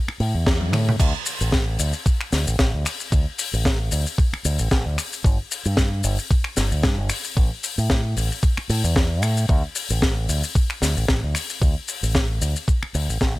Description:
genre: nu-disco, nu disco.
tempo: 113 BPM.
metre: 4/4.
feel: swing 55% on 16ths.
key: unclear.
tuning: A4 = 442 Hz.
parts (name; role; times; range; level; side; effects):
fingered electric bass with an envelope filter; bass; 0.1-13.4 s; G1 to A2; -22 LUFS; equal; tube saturation.
tight funk drum kit; drums; 0.1-13.3 s; crash cymbal, finger snaps, hi-hat, shaker, snare drum, toms; -25 LUFS; left 2 dB; none.
electronic kick drum; drums; 0.5-13.3 s; none; -19 LUFS; equal; none.
room: little or no reverb.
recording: faint mains hum.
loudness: -19 LUFS.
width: side -19 dB against mid.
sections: 1.0-13.4 A section.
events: band accent 0.5; drum fill 0.6-1.0; drop 1.0-13.4; fade-out 12.3-13.4.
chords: none.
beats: 0.47 | 1.00 1.53 2.06 2.59 | 3.12 3.65 4.18 4.71 | 5.25 5.78 6.31 6.84 | 7.37 7.90 8.43 8.96 | 9.49 10.02 10.55 11.09 | 11.62 12.15 12.68 13.21.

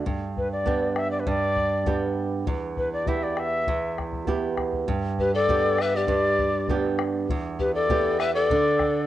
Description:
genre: andean folk, Andean ensemble.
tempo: 100 BPM.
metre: 2/4.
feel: straight.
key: unclear.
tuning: A4 = 440 Hz.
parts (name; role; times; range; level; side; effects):
flamenco guitar; accompaniment; 0.0-9.1 s; E2 to G4; -26 LUFS; right 4 dB; none.
bombo; percussion; 0.1-8.9 s; none; -31 LUFS; left 2 dB; none.
quena; melody; 0.4-9.1 s; B4 to E5; -25 LUFS; left 1 dB; cassette tape.
mellow hollow polished pan flute; second line; 5.2-9.1 s; G4 to B4; -26 LUFS; left 5 dB; none.
room: moderate spring reverb, RT60 2.2 s.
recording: home recording on cassette.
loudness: -22 LUFS.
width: side -13 dB against mid.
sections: 0.0-4.9 A section; 4.9-9.1 A section.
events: none.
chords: 0.1 G; 2.5 Em; 4.9 G; 7.3 Em; 8.5 D5.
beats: | 0.06 0.66 | 1.26 1.87 | 2.47 3.08 | 3.68 4.28 | 4.88 5.49 | 6.09 6.69 | 7.30 7.90 | 8.50.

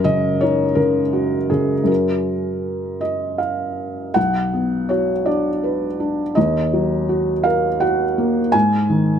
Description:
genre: neoclassical minimalist piano.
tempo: 54 BPM (dotted quarters).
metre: 6/8.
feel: uneven beats, rubato.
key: F# major.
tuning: A4 = 444 Hz.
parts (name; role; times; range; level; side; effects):
felt-muted upright piano; solo; 0.0-9.2 s; B1 to G#5; -17 LUFS; equal; none.
room: light reverb.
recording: close, detailed microphones.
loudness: -17 LUFS.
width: side -8 dB against mid.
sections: 0.0-4.2 A section; 4.2-9.2 B section.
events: none.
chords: 0.0 F#6; 1.9 F#; 4.2 Bm; 6.4 D#m; 8.5 G#5.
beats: 0.77 | 1.89 3.02 | 4.16 5.26 | 6.36 7.45 | 8.54.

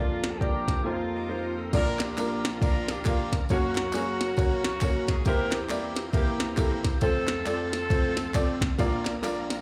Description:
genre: uptempo gospel.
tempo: 136 BPM.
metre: 4/4.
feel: swing 61% on 8ths.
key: Bb major.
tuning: A4 = 440 Hz.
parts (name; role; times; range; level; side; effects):
edgy saxophone section; melody; 0.0-8.6 s; Bb3 to Bb4; -34 LUFS; equal; slapback echo.
growling alto saxophone; melody; 0.0-1.5 s; F4 to A4; -39 LUFS; equal; slapback echo.
warm upright piano; accompaniment; 0.0-9.6 s; F1 to F5; -32 LUFS; equal; none.
bright tonewheel organ; sustained chords; 0.0-9.6 s; E3 to Bb4; -42 LUFS; equal; none.
mellow French horn section; sustained chords; 0.0-1.7 s; F3 to F4; -43 LUFS; equal; none.
minimal click drum kit; drums; 0.2-9.6 s; crash cymbal, hi-hat, kick drum, ride cymbal, snare drum; -30 LUFS; equal; none.
tambourine and handclaps; percussion; 1.7-9.6 s; none; -43 LUFS; equal; none.
room: light reverb.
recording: live gig heard through the venue's PA, club reverb.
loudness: -27 LUFS.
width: mono.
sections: 0.0-1.7 A section; 1.7-9.6 B section.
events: break 0.8-1.7.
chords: 0.0 Bb/F; 0.8 F7sus4; 1.7 Bb; 3.5 Gb; 5.3 C7/E; 7.0 F; 8.8 Bb.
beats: 0.40 0.84 1.29 | 1.73 2.17 2.61 3.05 | 3.50 3.94 4.38 4.82 | 5.26 5.70 6.14 6.58 | 7.02 7.46 7.91 8.35 | 8.79 9.23.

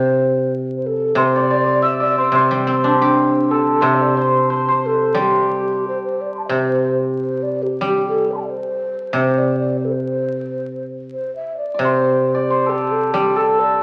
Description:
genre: chinese traditional, Chinese chamber ensemble.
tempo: 90 BPM.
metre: 2/4.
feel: straight.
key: unclear.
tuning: A4 = 439 Hz.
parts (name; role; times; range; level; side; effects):
breathy mellow low xiao; melody; 0.0-13.8 s; G4 to C6; -23 LUFS; equal; none.
guzheng; accompaniment; 0.0-13.8 s; C3 to G4; -22 LUFS; equal; none.
hammered dulcimer; second line; 1.2-8.3, 11.7-13.8 s; G4 to E5; -21 LUFS; equal; none.
room: wet recital hall reverb, RT60 1.6 s.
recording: very old 78 rpm record, vinyl crackle.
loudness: -18 LUFS.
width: mono.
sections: 0.0-6.5 A section; 6.5-13.8 B section.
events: none.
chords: none.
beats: 0.49 | 1.17 1.83 | 2.50 3.16 | 3.82 4.49 | 5.16 5.83 | 6.51 7.17 | 7.84 8.50 | 9.16 9.82 | 10.47 11.13 | 11.81 12.48 | 13.15 13.80.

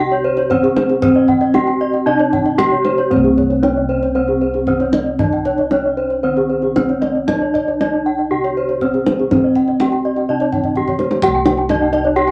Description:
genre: Balinese gamelan.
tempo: 115-129 BPM.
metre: 4/4.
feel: straight.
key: C pelog.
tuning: A4 = 440 Hz.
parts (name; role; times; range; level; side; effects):
gamelan-type bronze metallophone; melody; 0.0-12.3 s; C4 to G4-45c; -21 LUFS; equal; none.
gamelan-type bronze metallophone; arpeggios; 0.0-12.3 s; C5 to G5-45c; -22 LUFS; equal; none.
gamelan-type bossed gongs; bass; 0.0-12.3 s; C2 to G4-45c; -22 LUFS; equal; none.
gamelan-type bronze metallophone; arpeggios; 0.1-12.3 s; Ab4-40c to Ab5-40c; -27 LUFS; equal; none.
kendang; percussion; 0.1-12.3 s; none; -24 LUFS; equal; none.
room: wet small room reverb, RT60 0.5 s.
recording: none.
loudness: -16 LUFS.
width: mono.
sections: 0.0-11.2 A section; 11.2-12.3 B section.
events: drum fill 10.6-11.2.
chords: none.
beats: 0.51 | 1.03 1.55 2.07 2.59 | 3.12 3.64 4.16 4.68 | 5.20 5.72 6.25 6.77 | 7.29 7.81 8.32 8.82 | 9.31 9.80 10.29 10.76 | 11.23 11.70 12.16.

